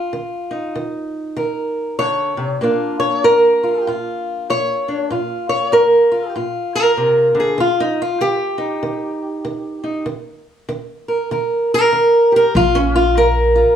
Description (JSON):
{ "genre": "acoustic country blues, solo or duo", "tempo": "97 BPM", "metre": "4/4", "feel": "swing 61% on 8ths", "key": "unclear", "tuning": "A4 = 440 Hz", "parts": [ { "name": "fingerpicked old ladder-braced acoustic guitar", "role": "melody", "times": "0.0-13.8 s", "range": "Bb2 to Db5", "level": "-15 LUFS", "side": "equal", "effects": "plate reverb" }, { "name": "upright bass", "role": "bass", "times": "12.6-13.6 s", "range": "Bb1", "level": "-18 LUFS", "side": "equal", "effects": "none" } ], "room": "moderate studio reverb, RT60 0.6 s", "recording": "studio ambience", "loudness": "-15 LUFS", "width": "side -9 dB against mid", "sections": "0.0-13.8 A section", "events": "steel-string acoustic guitar solo 0.0-13.8", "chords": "0.1 Eb5; 2.6 Bb; 7.6 Eb; 12.5 Bb5", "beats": "| 0.12 0.74 1.36 1.99 | 2.61 3.23 3.86 4.48 | 5.10 5.72 6.34 6.96 | 7.58 8.21 8.83 9.45 | 10.07 10.69 11.31 11.93 | 12.55 13.17" }